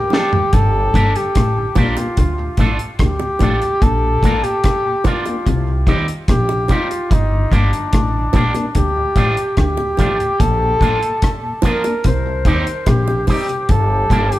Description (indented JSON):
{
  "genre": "roots reggae",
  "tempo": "73 BPM",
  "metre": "4/4",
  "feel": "straight",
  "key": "G minor",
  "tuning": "A4 = 442 Hz",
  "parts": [
    { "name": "warm flugelhorn", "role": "melody", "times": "0.0-14.4 s", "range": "D4 to C5", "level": "-19 LUFS", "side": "left 1 dB", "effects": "dub echo" },
    { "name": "mellow tonewheel organ", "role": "accompaniment", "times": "0.0-14.4 s", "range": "D2 to Eb4", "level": "-28 LUFS", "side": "left 2 dB", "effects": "chorus vibrato, slow rotary speaker" },
    { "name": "upright bass", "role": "bass", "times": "0.0-14.3 s", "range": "G1 to Eb2", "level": "-19 LUFS", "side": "equal", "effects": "none" },
    { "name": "electric guitar with an envelope filter", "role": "accompaniment", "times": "0.1-14.3 s", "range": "F3 to Bb4", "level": "-24 LUFS", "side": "right 2 dB", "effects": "none" },
    { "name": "deep reggae drum kit", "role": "drums", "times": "0.1-14.4 s", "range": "hi-hat, kick drum, rim click, snare drum, toms", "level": "-17 LUFS", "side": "equal", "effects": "none" },
    { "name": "bongos", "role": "percussion", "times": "0.1-13.5 s", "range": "none", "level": "-27 LUFS", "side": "right 4 dB", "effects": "dub echo" },
    { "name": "electric guitar at the edge of break-up", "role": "riff", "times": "0.5-14.2 s", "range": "G2 to Eb3", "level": "-25 LUFS", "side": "left 4 dB", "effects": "dub echo" }
  ],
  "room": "light reverb",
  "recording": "band playing live in one room",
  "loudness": "-14 LUFS",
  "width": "side -16 dB against mid",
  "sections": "0.5-14.4 A section",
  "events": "drum fill 0.0-0.5",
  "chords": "0.0 Dm; 0.5 Gm; 2.2 Dm; 3.8 Bb; 5.5 Cm; 7.1 Gm; 8.8 Dm; 10.4 Bb; 12.0 Cm; 13.7 Gm",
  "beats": "| 0.53 1.35 2.17 3.00 | 3.82 4.64 5.46 6.29 | 7.11 7.93 8.75 9.58 | 10.40 11.22 12.04 12.87 | 13.69"
}